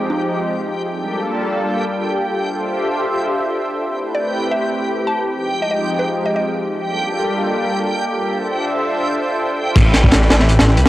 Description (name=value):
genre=drum and bass, jungle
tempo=163 BPM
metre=4/4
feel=swing 55% on 16ths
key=A phrygian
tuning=A4 = 439 Hz
part: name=lush unison pad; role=sustained chords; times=0.0-10.9 s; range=F3 to E5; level=-20 LUFS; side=equal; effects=chorus, cassette tape
part: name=backwards swelling texture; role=texture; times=0.0-10.9 s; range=G4 to D6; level=-24 LUFS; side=left 1 dB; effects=built-in reverb, cassette tape
part: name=mallet-like synth pluck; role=melody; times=0.1-0.6, 4.1-6.4, 10.0-10.6 s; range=Eb4 to A5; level=-25 LUFS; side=equal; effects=chorus, cassette tape, dub echo
part: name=detuned saw bass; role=bass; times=9.8-10.9 s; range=A1 to C2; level=-14 LUFS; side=equal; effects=none
part: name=crunchy breakbeat drum kit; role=drums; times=9.8-10.9 s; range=crash cymbal, hi-hat, kick drum, snare drum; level=-12 LUFS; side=equal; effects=cassette tape
room=wet spring reverb, RT60 2.0 s, studio ambience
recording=home recording on cassette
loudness=-16 LUFS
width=side -16 dB against mid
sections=0.0-9.8 A section; 9.8-10.9 B section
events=drop 9.8-10.9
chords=0.0 Fm9; 0.9 Gm9; 2.4 Dm9; 3.9 Am9; 5.3 Fm9; 6.8 Gm9; 8.3 Dm9; 9.8 Am9